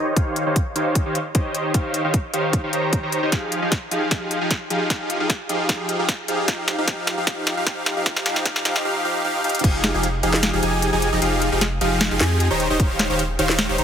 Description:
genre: future bass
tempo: 152 BPM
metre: 4/4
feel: half-time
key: F minor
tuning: A4 = 440 Hz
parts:
  - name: supersaw chords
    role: riff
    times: 0.0-13.8 s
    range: Eb3 to Bb5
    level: -21 LUFS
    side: equal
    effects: sidechain pumping, low-pass filter, dub echo
  - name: electronic kick drum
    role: drums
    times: 0.2-9.7, 12.8-12.9 s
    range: none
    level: -21 LUFS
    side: equal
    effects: none
  - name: trap drum kit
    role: drums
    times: 0.2-13.8 s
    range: crash cymbal, hi-hat, snare drum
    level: -24 LUFS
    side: equal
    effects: high-pass filter on snare, high-pass filter on hats, high-pass filter on cymbals
  - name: saturated sub bass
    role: bass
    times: 9.6-13.8 s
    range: Eb1 to F2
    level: -24 LUFS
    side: equal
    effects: sidechain pumping
room: light reverb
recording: heavily compressed radio sound, multiband compression, high-pass filter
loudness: -19 LUFS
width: side -8 dB against mid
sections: 0.0-9.6 A section; 9.6-13.8 B section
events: build-up 0.0-9.6; filter sweep on supersaw synth 0.0-9.6; filter sweep 0.0-9.6; drum fill 3.3-8.8, 9.4; drop 9.6-13.8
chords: 0.0 Eb13; 3.3 Fm9; 6.5 Ebadd9/F; 9.6 Fm9; 12.6 Eb13

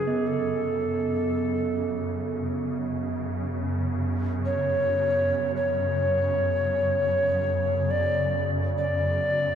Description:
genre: world meditative, free-time meditation music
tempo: free time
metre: none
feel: none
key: F# minor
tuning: A4 = 440 Hz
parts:
  - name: mellow Native American-style cedar flute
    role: melody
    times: 0.0-9.6 s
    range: G#4 to D5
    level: -25 LUFS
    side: equal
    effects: tape echo
  - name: swarming drone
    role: drone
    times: 0.0-9.6 s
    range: F#2 to C#3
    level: -28 LUFS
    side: equal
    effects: built-in reverb
  - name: bronze singing bowl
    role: texture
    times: 0.1-7.3 s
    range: B3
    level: -32 LUFS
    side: right 5 dB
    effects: none
room: moderate huge ambient reverb, RT60 3.8 s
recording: dark, warm production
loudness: -23 LUFS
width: side -8 dB against mid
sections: 0.0-9.6 A section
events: none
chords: none

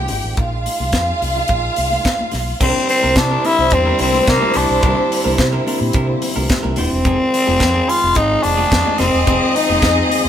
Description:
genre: disco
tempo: 108 BPM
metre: 4/4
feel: straight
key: unclear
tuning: A4 = 437 Hz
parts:
  - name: clear symphonic string section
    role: second line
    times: 0.0-10.3 s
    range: G3 to G5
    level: -20 LUFS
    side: equal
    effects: none
  - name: dark French horn section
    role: sustained chords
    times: 0.0-10.3 s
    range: C3 to Ab4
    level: -27 LUFS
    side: right 2 dB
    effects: none
  - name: vintage muted fingered electric bass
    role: bass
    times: 0.0-10.3 s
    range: Eb1 to C3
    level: -21 LUFS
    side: equal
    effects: none
  - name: tight funk drum kit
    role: drums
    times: 0.1-10.2 s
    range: crash cymbal, hi-hat, kick drum, snare drum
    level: -20 LUFS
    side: equal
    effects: none
  - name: congas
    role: percussion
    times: 0.1-10.2 s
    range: none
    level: -30 LUFS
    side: left 4 dB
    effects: none
  - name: growling tenor saxophone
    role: melody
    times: 2.6-10.1 s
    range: Bb3 to F4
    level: -16 LUFS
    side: left 1 dB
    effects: none
  - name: clean electric guitar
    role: accompaniment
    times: 2.6-10.3 s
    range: C4 to C5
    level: -27 LUFS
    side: right 3 dB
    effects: none
  - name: mellow tine electric piano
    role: accompaniment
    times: 2.6-10.3 s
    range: D3 to F4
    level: -27 LUFS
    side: left 4 dB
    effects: slow stereo tremolo
room: moderate stone room reverb, RT60 1.1 s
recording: band playing live in one room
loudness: -13 LUFS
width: side -10 dB against mid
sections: 0.0-2.6 A section; 2.6-10.3 B section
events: none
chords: 0.4 Bb9sus4; 2.6 C9; 7.1 Fm7

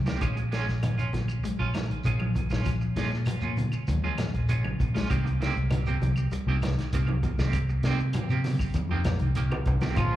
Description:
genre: afrobeat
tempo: 98 BPM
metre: 4/4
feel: straight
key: unclear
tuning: A4 = 440 Hz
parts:
  - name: mellow electric guitar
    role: arpeggios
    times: 0.0-10.2 s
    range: Db3 to Ab3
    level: -35 LUFS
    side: left 6 dB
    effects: slapback echo
  - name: vintage muted fingered electric bass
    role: bass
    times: 0.0-10.1 s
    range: Bb1 to C3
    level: -27 LUFS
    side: equal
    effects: none
  - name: electric guitar at the edge of break-up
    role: stabs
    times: 0.1-10.2 s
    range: Eb3 to G4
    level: -34 LUFS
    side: right 6 dB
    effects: tremolo, slapback echo, tape echo
  - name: vintage drum kit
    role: drums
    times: 0.1-10.1 s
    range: hi-hat, kick drum, snare drum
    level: -32 LUFS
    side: equal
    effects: none
  - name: congas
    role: percussion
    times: 0.1-10.1 s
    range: none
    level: -34 LUFS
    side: right 2 dB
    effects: slapback echo
  - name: shekere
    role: percussion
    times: 0.1-10.1 s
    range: none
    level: -33 LUFS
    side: left 1 dB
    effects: none
  - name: claves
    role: percussion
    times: 0.2-10.1 s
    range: none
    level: -45 LUFS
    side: left 2 dB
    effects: slapback echo
  - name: breathy trumpet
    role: melody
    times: 10.0-10.2 s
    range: F4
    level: -29 LUFS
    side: right 2 dB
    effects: none
  - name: bright trombone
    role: second line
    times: 10.0-10.2 s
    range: F3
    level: -37 LUFS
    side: right 2 dB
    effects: none
room: small room reverb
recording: live gig heard through the venue's PA, club reverb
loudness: -25 LUFS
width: side -14 dB against mid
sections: 0.0-10.0 A section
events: drum fill 0.0, 9.1-10.0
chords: 0.2 Bbm7; 5.1 Cm7

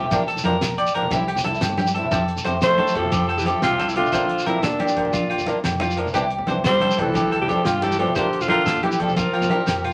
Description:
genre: highlife guitar band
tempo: 119 BPM (dotted quarters)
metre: 12/8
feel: straight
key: F major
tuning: A4 = 441 Hz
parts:
  - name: fingerpicked swing-style acoustic guitar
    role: accompaniment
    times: 0.0-9.6 s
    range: E3 to G4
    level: -30 LUFS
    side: equal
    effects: none
  - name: electric guitar at the edge of break-up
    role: arpeggios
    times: 0.0-9.9 s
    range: F4 to D5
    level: -27 LUFS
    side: equal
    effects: none
  - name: congas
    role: percussion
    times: 0.0-9.9 s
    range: none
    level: -31 LUFS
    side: equal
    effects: none
  - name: fingered electric bass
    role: bass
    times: 0.1-9.9 s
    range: Bb1 to F3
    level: -32 LUFS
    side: equal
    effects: none
  - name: damped 70s drum kit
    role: drums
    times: 0.1-9.9 s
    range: hi-hat, kick drum, snare drum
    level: -32 LUFS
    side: equal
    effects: none
  - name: agogo bells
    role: percussion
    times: 0.1-9.9 s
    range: none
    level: -31 LUFS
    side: equal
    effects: none
  - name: shekere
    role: percussion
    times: 0.1-9.8 s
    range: none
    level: -33 LUFS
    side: equal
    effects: none
  - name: growling alto saxophone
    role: melody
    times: 2.6-9.9 s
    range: D4 to C5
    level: -24 LUFS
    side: equal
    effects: none
  - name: warm tenor saxophone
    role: second line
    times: 2.6-9.9 s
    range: Bb2 to A3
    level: -29 LUFS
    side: equal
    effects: none
room: moderate studio reverb, RT60 0.8 s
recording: vinyl crackle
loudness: -21 LUFS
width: mono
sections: 0.0-2.1 A section; 2.1-9.9 B section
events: drum fill 9.7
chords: 0.1 Bb; 1.1 C; 2.1 Fadd9; 4.1 Bb; 6.1 Cadd9; 8.2 Bb

